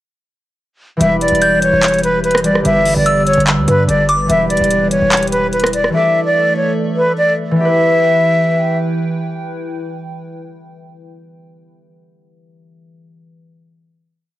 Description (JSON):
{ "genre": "hip hop, trap", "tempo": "146 BPM", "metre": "4/4", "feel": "half-time", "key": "E minor", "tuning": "A4 = 440 Hz", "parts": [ { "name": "breathy concert flute", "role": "melody", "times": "1.0-8.8 s", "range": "B4 to E5", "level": "-14 LUFS", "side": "equal", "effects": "cassette tape" }, { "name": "concert harp", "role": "accompaniment", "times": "1.0-12.0 s", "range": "D3 to D5", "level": "-17 LUFS", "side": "equal", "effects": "none" }, { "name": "hollow soft pad", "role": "sustained chords", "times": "1.0-11.6 s", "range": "E3 to G5", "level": "-25 LUFS", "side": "right 2 dB", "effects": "chorus, phaser" }, { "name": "hard-hitting 808-style bass", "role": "bass", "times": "1.0-5.9 s", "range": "E1 to G2", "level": "-23 LUFS", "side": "equal", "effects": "none" }, { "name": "trap drum kit", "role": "drums", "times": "1.0-5.9 s", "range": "handclaps, hi-hat, rim click", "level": "-18 LUFS", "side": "equal", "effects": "cassette tape" }, { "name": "delicate synth tine bell", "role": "second line", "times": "1.4-4.3 s", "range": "D6 to G6", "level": "-19 LUFS", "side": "equal", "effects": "chorus, analog delay" } ], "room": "little or no reverb", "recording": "home recording on cassette", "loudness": "-11 LUFS", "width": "side -14 dB against mid", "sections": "1.0-7.6 hook; 7.6-10.9 final chord", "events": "none", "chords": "1.0 Em; 2.7 G; 4.3 Em; 5.9 Asus4" }